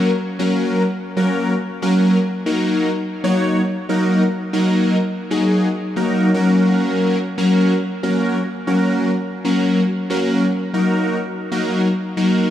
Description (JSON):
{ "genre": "pop", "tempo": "116 BPM", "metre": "4/4", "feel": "straight", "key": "Eb minor", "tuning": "A4 = 442 Hz", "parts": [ { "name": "big bright polysynth", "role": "solo", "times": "0.0-12.5 s", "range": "Gb3 to Db5", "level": "-16 LUFS", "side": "equal", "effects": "chorus, dub echo" } ], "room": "wet echo chamber reverb, RT60 2.5 s", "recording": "echo-heavy mix, small room ambience", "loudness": "-16 LUFS", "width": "side -11 dB against mid", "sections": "0.0-2.5 A section; 2.5-12.5 A section", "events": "drop 0.0-2.5, 2.5-12.5", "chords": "0.0 Gb; 2.5 Ebm; 6.3 Gb; 10.7 Ebm", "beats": "| 0.40 0.91 1.43 1.95 | 2.46 2.98 3.50 4.02 | 4.53 5.05 5.57 6.08 | 6.60 7.12 7.64 8.15 | 8.67 9.19 9.71 10.22 | 10.74 11.26 11.77 12.29" }